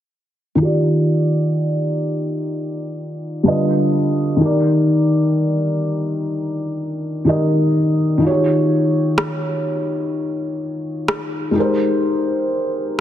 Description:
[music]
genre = contemporary R&B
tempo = 63 BPM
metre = 4/4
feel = swing 54% on 16ths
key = Eb major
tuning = A4 = 440 Hz
[part]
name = felt-muted upright piano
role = accompaniment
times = 0.6-13.0 s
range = D3 to Eb5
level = -16 LUFS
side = equal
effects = low-pass filter
[part]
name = electronic rim click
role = drums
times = 9.2-11.3 s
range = none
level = -24 LUFS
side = equal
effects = none
[sound]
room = wet concert hall reverb, RT60 2.4 s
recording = dense, heavily limited modern master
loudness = -16 LUFS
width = side -11 dB against mid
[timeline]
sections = 0.6-13.0 A section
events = filter sweep on felt piano 0.6-13.0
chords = 0.6 Ebmaj7; 3.5 G7b13; 4.4 Ebmaj7; 8.2 Eb9; 11.6 Abmaj9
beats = | 0.60 1.55 2.51 3.46 | 4.41 5.36 6.32 7.27 | 8.22 9.17 10.12 11.08 | 12.03 12.98

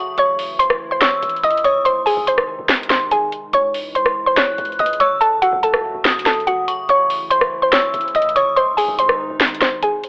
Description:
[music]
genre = hip hop, trap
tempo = 143 BPM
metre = 4/4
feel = half-time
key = unclear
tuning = A4 = 441 Hz
[part]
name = metallic FM bell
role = second line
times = 0.0-1.8, 4.4-8.6 s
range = C#6 to F#6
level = -23 LUFS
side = left 1 dB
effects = chorus, cassette tape, analog delay
[part]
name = warbly tape-like pad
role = sustained chords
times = 0.0-10.1 s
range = B#2 to F#4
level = -34 LUFS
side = equal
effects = chorus, built-in reverb, cassette tape
[part]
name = mallet-like synth pluck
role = melody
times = 0.2-10.0 s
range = F#4 to D#6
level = -16 LUFS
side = equal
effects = chorus, phaser
[part]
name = hard-hitting 808-style bass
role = bass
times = 0.2-10.0 s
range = F#1 to C#2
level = -38 LUFS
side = equal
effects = none
[part]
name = trap drum kit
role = drums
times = 0.2-10.1 s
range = hi-hat, rim click, snare drum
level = -19 LUFS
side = equal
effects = cassette tape
[sound]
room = light reverb, digital ambience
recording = home recording on cassette, telephone sound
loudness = -14 LUFS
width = side -28 dB against mid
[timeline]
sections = 0.0-10.1 A section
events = none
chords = 0.2 A; 1.9 G#; 3.5 C#m; 5.2 F#m; 6.9 A; 8.6 G#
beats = | 0.18 0.59 1.01 1.43 | 1.85 2.27 2.69 3.11 | 3.53 3.95 4.37 4.79 | 5.21 5.63 6.05 6.47 | 6.89 7.31 7.73 8.15 | 8.57 8.99 9.41 9.83

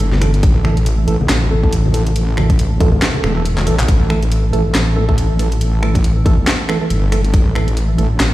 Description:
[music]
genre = deep dubstep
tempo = 139 BPM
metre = 4/4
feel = swing 58% on 16ths, half-time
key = unclear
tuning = A4 = 440 Hz
[part]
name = wobble bass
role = bass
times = 0.0-8.3 s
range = E1 to Bb1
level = -15 LUFS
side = equal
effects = chorus
[part]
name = garage drum kit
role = drums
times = 0.0-8.3 s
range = finger snaps, handclaps, hi-hat, snare drum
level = -21 LUFS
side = equal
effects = overdrive, small room ambience
[part]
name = congas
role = percussion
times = 0.1-3.7 s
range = none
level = -22 LUFS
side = left 2 dB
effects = dub echo
[part]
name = percussive organ stab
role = stabs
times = 0.2-8.1 s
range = E3 to A4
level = -21 LUFS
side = right 3 dB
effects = wide subtle chorus, dub echo
[part]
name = electronic kick drum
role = drums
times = 0.4-7.4 s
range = none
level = -13 LUFS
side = equal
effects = overdrive, small room ambience
[sound]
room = digital ambience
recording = played on a big sound system in a bare room, stone room reverb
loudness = -12 LUFS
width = side -16 dB against mid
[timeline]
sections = 0.0-3.9 A section; 3.9-8.3 A section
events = drop 0.0-3.9, 3.9-8.3; drum fill 3.6-3.9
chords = 0.0 A5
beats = 0.00 | 0.43 0.86 1.29 1.72 | 2.16 2.59 3.02 3.45 | 3.88 4.31 4.75 5.18 | 5.61 6.04 6.47 6.90 | 7.34 7.77 8.20

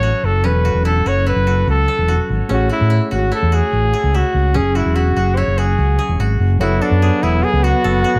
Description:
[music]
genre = progressive instrumental, progressive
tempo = 146 BPM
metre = 5/4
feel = straight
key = F# minor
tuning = A4 = 438 Hz
[part]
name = warm trumpet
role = melody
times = 0.0-8.2 s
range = D4 to C#5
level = -22 LUFS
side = equal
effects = digital delay
[part]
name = mellow tine electric piano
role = accompaniment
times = 0.0-8.2 s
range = F#3 to C#5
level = -26 LUFS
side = equal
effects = none
[part]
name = koto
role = arpeggios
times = 0.0-8.2 s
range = C#4 to A4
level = -27 LUFS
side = equal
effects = digital delay
[part]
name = overdriven fingered electric bass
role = bass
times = 0.0-8.2 s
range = E1 to A2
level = -18 LUFS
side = equal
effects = none
[part]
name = breathy flugelhorn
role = second line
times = 6.6-8.2 s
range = B3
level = -24 LUFS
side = equal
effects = none
[sound]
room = light reverb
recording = none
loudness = -16 LUFS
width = mono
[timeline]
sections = 0.0-6.6 A section; 6.6-8.2 A section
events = none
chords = 0.0 F#m; 2.5 Amaj7; 4.5 F#sus2; 6.6 F#m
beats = 0.03 | 0.44 0.85 1.26 1.67 2.08 | 2.50 2.91 3.32 3.73 4.14 | 4.55 4.96 5.37 5.78 6.19 | 6.61 7.02 7.43 7.84

